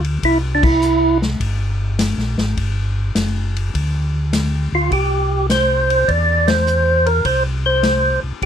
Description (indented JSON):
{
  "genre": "soul jazz organ trio",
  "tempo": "102 BPM",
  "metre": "4/4",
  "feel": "swing 68% on 8ths",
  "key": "unclear",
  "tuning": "A4 = 440 Hz",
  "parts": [
    { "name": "mellow tonewheel organ", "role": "bass", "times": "0.0-8.5 s", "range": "F#1 to E2", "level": "-19 LUFS", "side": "equal", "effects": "chorus vibrato, slow rotary speaker" },
    { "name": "vintage drum kit", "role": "drums", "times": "0.0-8.5 s", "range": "crash cymbal, hi-hat, kick drum, ride cymbal, snare drum", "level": "-23 LUFS", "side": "left 2 dB", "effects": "none" },
    { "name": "percussive tonewheel organ", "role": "melody", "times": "0.2-1.2, 4.7-8.5 s", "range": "D4 to D5", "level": "-15 LUFS", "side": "right 1 dB", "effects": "slow rotary speaker, overdrive" }
  ],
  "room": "moderate booth ambience, RT60 0.2 s",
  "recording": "none",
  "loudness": "-15 LUFS",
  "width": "side -9 dB against mid",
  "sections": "0.0-8.5 A section",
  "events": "band accent 0.5, 6.4",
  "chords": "0.2 C7; 2.6 G5; 4.9 C"
}